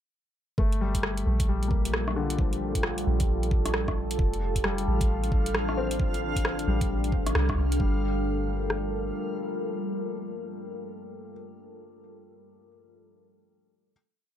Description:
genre	future garage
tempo	133 BPM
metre	4/4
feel	swing 62% on 16ths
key	G minor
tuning	A4 = 440 Hz
part	warm upright piano	accompaniment	0.6-13.9 s	D3 to C4	-34 LUFS	left 5 dB	sidechain pumping, tape echo
part	deep dark ambient pad	sustained chords	1.3-11.3 s	G3 to Bb4	-32 LUFS	equal	chorus, built-in reverb, sidechain pumping
part	soft 808-style bass	bass	0.6-9.1 s	F1 to C2	-29 LUFS	equal	sidechain pumping
part	garage drum kit	drums	0.6-8.8 s	kick drum, rim click	-27 LUFS	equal	none
part	garage drum kit	drums	0.7-7.8 s	hi-hat, rim click	-31 LUFS	equal	none
part	backwards swelling texture	texture	5.0-7.8 s	F3 to F5	-39 LUFS	right 4 dB	built-in reverb
room	light reverb, digital ambience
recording	echo-heavy mix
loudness	-25 LUFS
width	side -10 dB against mid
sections	0.6-7.8 groove; 7.8-11.4 final chord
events	band accent 7.4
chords	0.6 Gm9; 4.2 F69; 7.8 Gm9

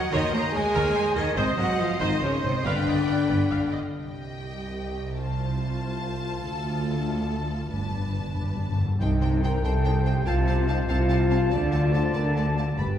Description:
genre	cinematic, heroic adventure film score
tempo	95 BPM (dotted quarters)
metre	6/8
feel	straight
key	C dorian from 3.9 s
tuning	A4 = 439 Hz
part	rich studio violin section	melody	0.0-12.9 s	Eb5 to B5	-37 LUFS	left 3 dB	none
part	clear oboe	second line	0.0-3.6, 9.0-13.0 s	Bb4 to A5	-33 LUFS	right 1 dB	none
part	mellow hollow flute section	second line	0.0-3.7, 9.0-13.0 s	C5 to C6	-35 LUFS	left 1 dB	none
part	warm symphonic violin section	second line	0.0-12.8 s	A4 to Bb5	-36 LUFS	left 1 dB	none
part	warm French horn section	sustained chords	0.0-3.7, 9.0-13.0 s	C4 to C5	-28 LUFS	left 3 dB	none
part	warm symphonic cello section	bass	0.0-13.0 s	C2 to Bb3	-29 LUFS	right 1 dB	none
part	rich symphonic viola section	accompaniment	0.1-12.9 s	A3 to F5	-36 LUFS	equal	none
part	rich chamber double bass section	bass	0.1-13.0 s	G1 to Eb2	-28 LUFS	right 1 dB	none
part	timpani	percussion	7.7-9.6, 12.8-13.0 s	G2 to C3	-29 LUFS	left 1 dB	none
part	clear clarinet	second line	9.0-13.0 s	B4 to D5	-37 LUFS	left 2 dB	none
room	wet scoring stage reverb, RT60 1.8 s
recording	heard from further back in the room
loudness	-22 LUFS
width	side -10 dB against mid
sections	0.0-3.9 A section; 3.9-9.0 B section; 9.0-13.0 C section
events	timpani fill 7.7-9.0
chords	0.0 Ebm7; 1.4 Ab; 2.7 G7; 3.9 Cm; 5.2 F/C; 6.5 Dm; 7.7 Gadd9; 9.0 Cm; 10.3 F/C; 11.5 Dm

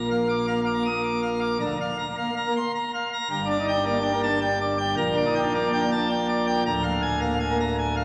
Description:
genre	classical, organ toccata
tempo	107 BPM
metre	3/4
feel	straight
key	unclear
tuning	A4 = 444 Hz
part	pipe organ, plenum	solo	0.0-8.0 s	D1 to Eb6	-25 LUFS	equal	none
room	wet church reverb, RT60 2.6 s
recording	none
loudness	-25 LUFS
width	mono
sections	0.0-8.0 A section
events	none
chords	0.0 Bb; 1.6 Bb/D; 3.3 Gm; 5.0 Gm/Bb; 6.7 Bb7/D

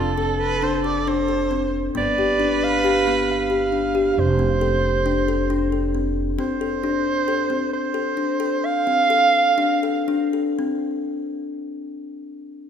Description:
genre	contemporary instrumental, chamber music in an uneven meter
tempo	135 BPM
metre	5/4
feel	straight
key	unclear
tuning	A4 = 440 Hz
part	clear soprano saxophone	melody	0.0-10.6 s	A4 to F5	-22 LUFS	right 3 dB	none
part	rich viola	second line	0.0-4.1 s	F4 to D5	-25 LUFS	right 3 dB	none
part	kalimba	arpeggios	0.0-11.0 s	B3 to A4	-22 LUFS	left 3 dB	none
part	upright bass	bass	0.0-6.4 s	F1 to G1	-26 LUFS	right 1 dB	none
room	wet concert hall reverb, RT60 2.5 s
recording	minimal, uncompressed stereo recording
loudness	-18 LUFS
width	side -8 dB against mid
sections	0.0-11.1 A section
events	slowing down 7.3-11.1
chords	0.0 Dm7/F; 2.0 G7; 4.2 F6; 6.4 D5

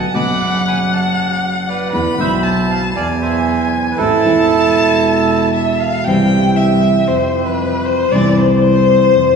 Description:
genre	tango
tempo	117 BPM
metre	4/4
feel	rubato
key	A harmonic minor, C major from 6.1 s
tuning	A4 = 439 Hz
part	bandoneon	melody	0.0-5.5 s	E4 to D6	-17 LUFS	right 5 dB	none
part	warm violin	second line	0.0-9.4 s	B4 to B5	-16 LUFS	left 3 dB	none
part	nylon-string guitar	accompaniment	0.0-9.4 s	B2 to F#4	-18 LUFS	left 1 dB	none
part	clear double bass	bass	0.0-9.4 s	E1 to F2	-18 LUFS	right 1 dB	none
room	wet church reverb, RT60 3.2 s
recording	recorded in a church or concert hall, studio ambience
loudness	-12 LUFS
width	side -6 dB against mid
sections	0.0-6.1 A section; 6.1-9.4 B section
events	violin solo 6.1-9.4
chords	0.0 Bm7; 1.9 E7sus4; 3.0 E; 4.0 Am; 6.1 C; 7.1 F5; 8.1 C

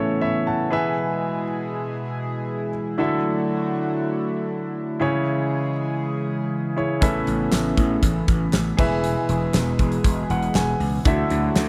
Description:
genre	1980s-style pop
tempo	119 BPM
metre	4/4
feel	straight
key	E mixolydian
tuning	A4 = 441 Hz
part	clear concert grand piano	accompaniment	0.0-11.7 s	A2 to A5	-26 LUFS	equal	none
part	chorused pulse-width pad	sustained chords	0.0-11.7 s	B2 to G#4	-29 LUFS	equal	none
part	gritty slap bass	bass	7.0-11.7 s	E1 to D2	-27 LUFS	equal	overdrive
part	huge arena drum kit	drums	7.0-11.7 s	crash cymbal, hi-hat, kick drum, snare drum, tambourine	-24 LUFS	equal	none
part	group handclap	percussion	7.5-11.7 s	none	-40 LUFS	equal	none
room	little or no reverb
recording	dry, close 1970s-style studio recording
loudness	-23 LUFS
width	mono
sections	0.0-11.7 A section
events	grand piano fill 10.0-11.1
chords	0.0 Aadd9; 0.7 E; 3.0 Dadd9; 5.0 C#m; 7.0 Aadd9; 8.8 E; 11.1 Dadd9

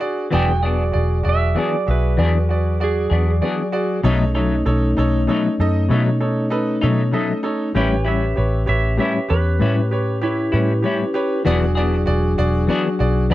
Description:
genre	slow blues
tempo	65 BPM (dotted quarters)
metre	12/8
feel	straight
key	E mixolydian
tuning	A4 = 440 Hz
part	clear grand piano	accompaniment	0.0-13.3 s	D#4 to E5	-24 LUFS	right 2 dB	none
part	mellow tonewheel organ	sustained chords	0.0-13.3 s	F#3 to D5	-24 LUFS	left 2 dB	slow rotary speaker
part	clean lap steel guitar	second line	0.3-13.3 s	E4 to G5	-26 LUFS	right 5 dB	none
part	semi-hollow electric guitar	accompaniment	0.3-13.3 s	A2 to G#4	-21 LUFS	left 4 dB	harmonic tremolo
part	vintage muted fingered electric bass	bass	0.3-13.3 s	E1 to B2	-19 LUFS	equal	none
room	digital ambience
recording	dry, close 1970s-style studio recording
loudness	-16 LUFS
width	side -15 dB against mid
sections	0.0-13.3 A section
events	electric slide guitar solo 0.0-13.3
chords	0.0 E7; 4.0 B7; 7.8 A7; 11.5 E7

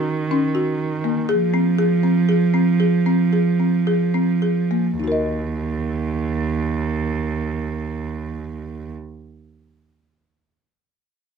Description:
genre	contemporary instrumental, chamber music in an uneven meter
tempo	103-122 BPM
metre	7/4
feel	straight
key	Eb dorian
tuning	A4 = 440 Hz
part	folk marimba with medium mallets	arpeggios	0.0-9.0 s	Bb3 to Eb5	-22 LUFS	left 4 dB	none
part	warm cello	bass	0.0-8.9 s	Eb2 to F3	-20 LUFS	right 4 dB	none
room	light reverb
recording	close, detailed microphones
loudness	-18 LUFS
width	side -6 dB against mid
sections	0.0-5.0 A section; 5.0-9.1 B section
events	slowing down 0.8-5.0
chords	0.0 Ebm7; 1.3 Fm; 5.0 Ebm

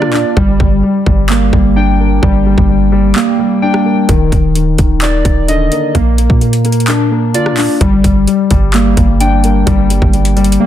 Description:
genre	hip hop, trap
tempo	129 BPM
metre	4/4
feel	half-time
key	G minor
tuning	A4 = 440 Hz
part	dark concert grand piano	accompaniment	0.0-10.7 s	D3 to F4	-16 LUFS	left 7 dB	low-pass filter
part	warbly lo-fi synth keys	arpeggios	0.0-10.7 s	Eb3 to G5	-14 LUFS	right 1 dB	chorus, low-pass filter, ping-pong delay
part	warm 808-style bass	bass	0.0-10.6 s	Eb1 to D3	-13 LUFS	right 1 dB	none
part	trap drum kit	drums	0.0-10.6 s	handclaps, hi-hat, kick drum, rim click	-14 LUFS	equal	overdrive
room	digital ambience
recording	dense, heavily limited modern master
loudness	-9 LUFS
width	side -11 dB against mid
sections	0.0-10.7 A section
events	break 0.0-4.1; kick muted 3.2-4.1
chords	0.4 Gm; 4.1 Eb5; 5.9 Bb; 7.8 Gm

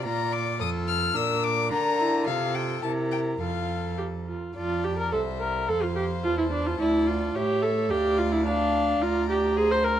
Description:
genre	quick classical-period movement for string quartet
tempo	108 BPM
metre	2/4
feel	straight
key	F major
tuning	A4 = 438 Hz
part	warm violin	melody	0.0-10.0 s	E5 to F6	-31 LUFS	left 7 dB	none
part	warm violin	second line	0.0-10.0 s	A4 to F5	-32 LUFS	left 4 dB	none
part	warm viola	accompaniment	0.0-10.0 s	D4 to C5	-26 LUFS	right 1 dB	none
part	rich cello	bass	0.0-10.0 s	C2 to D3	-30 LUFS	right 3 dB	none
room	moderate large studio reverb, RT60 1.3 s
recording	dark, warm production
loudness	-23 LUFS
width	side -10 dB against mid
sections	0.0-4.6 A section; 4.6-10.0 A section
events	none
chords	0.0 Bb; 0.6 F; 1.2 Bb; 2.3 F/C; 2.8 C7; 3.4 F; 5.1 C7; 5.7 F; 6.8 Dm; 7.4 A7; 7.9 Dm; 9.0 Bb/D

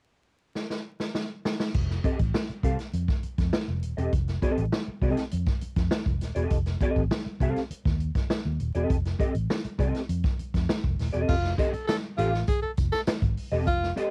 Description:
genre	funk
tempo	100 BPM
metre	4/4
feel	straight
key	F mixolydian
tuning	A4 = 440 Hz
part	swinging big-band drum kit	drums	0.6-14.1 s	crash cymbal, hi-hat, kick drum, snare drum	-30 LUFS	equal	cassette tape
part	vintage muted fingered electric bass	bass	1.7-13.9 s	Eb1 to F2	-31 LUFS	equal	none
part	mellow electric guitar	accompaniment	2.0-14.1 s	C4 to F5	-30 LUFS	equal	ensemble chorus, cassette tape
part	warm tenor saxophone	second line	11.3-13.9 s	F4 to A4	-31 LUFS	equal	cassette tape
part	tambourine	percussion	11.6-14.1 s	none	-53 LUFS	equal	none
room	little or no reverb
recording	home recording on cassette, vinyl crackle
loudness	-27 LUFS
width	mono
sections	0.0-1.7 A section; 1.7-11.3 B section; 11.3-14.1 C section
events	drum fill 0.6-1.7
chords	0.0 N.C.; 1.7 F9

